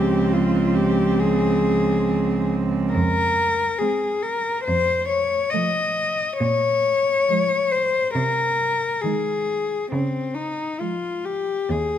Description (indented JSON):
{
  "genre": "classical, lyrical piece for cello ensemble",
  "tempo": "69 BPM",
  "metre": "4/4",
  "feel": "rubato",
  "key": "unclear",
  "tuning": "A4 = 440 Hz",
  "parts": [
    { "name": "warm cello", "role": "melody", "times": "0.0-12.0 s", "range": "C4 to Eb5", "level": "-21 LUFS", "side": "left 3 dB", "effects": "none" },
    { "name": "dark cello", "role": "second line", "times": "0.0-11.5 s", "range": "Ab3 to C4", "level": "-27 LUFS", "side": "right 12 dB", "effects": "none" },
    { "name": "warm cello", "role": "accompaniment", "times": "0.0-11.5 s", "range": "Eb3 to Ab3", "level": "-27 LUFS", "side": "left 2 dB", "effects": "none" },
    { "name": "warm cello", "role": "bass", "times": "0.0-12.0 s", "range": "Db2 to Db3", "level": "-24 LUFS", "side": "right 2 dB", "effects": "none" }
  ],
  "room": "moderate scoring stage reverb, RT60 1.8 s",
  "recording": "close, detailed microphones",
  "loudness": "-19 LUFS",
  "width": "side -10 dB against mid",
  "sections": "0.0-12.0 A section",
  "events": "none",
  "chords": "0.0 Dbmaj7; 2.9 Fm; 4.7 F7; 6.4 Bbm7; 8.2 Ab/C; 9.9 Db"
}